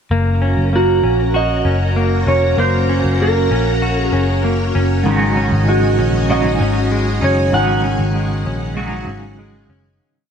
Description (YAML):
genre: dream pop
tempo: 97 BPM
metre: 4/4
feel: straight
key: Gb major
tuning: A4 = 436 Hz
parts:
  - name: string machine, violins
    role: sustained chords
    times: 0.1-10.0 s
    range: Db4 to Bb5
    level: -22 LUFS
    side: equal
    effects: ensemble chorus
  - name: semi-hollow electric guitar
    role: arpeggios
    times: 0.1-10.3 s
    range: Eb3 to Gb4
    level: -21 LUFS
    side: left 2 dB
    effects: wide subtle chorus, ping-pong delay
  - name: vintage muted picked electric bass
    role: bass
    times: 0.1-10.0 s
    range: F1 to Bb1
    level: -18 LUFS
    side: equal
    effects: none
  - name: clean lap steel guitar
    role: melody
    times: 0.8-9.7 s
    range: Gb4 to Gb5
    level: -19 LUFS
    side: right 3 dB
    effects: none
  - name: celesta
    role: texture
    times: 0.8-1.7, 6.3-8.5 s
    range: Ab5 to Db6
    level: -32 LUFS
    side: left 5 dB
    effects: none
  - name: clean electric guitar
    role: accompaniment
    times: 5.0-10.3 s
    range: Ab2 to Eb4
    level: -21 LUFS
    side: right 4 dB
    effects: tremolo, analog chorus
room: light reverb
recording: dark, warm production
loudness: -13 LUFS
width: side -7 dB against mid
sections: 0.1-10.0 verse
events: fade-out 7.5-10.0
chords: 0.1 Gb; 5.1 Ab7sus4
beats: | 0.11 0.73 1.34 1.96 | 2.58 3.20 3.82 4.44 | 5.05 5.67 6.29 6.91 | 7.53 8.15 8.77 9.38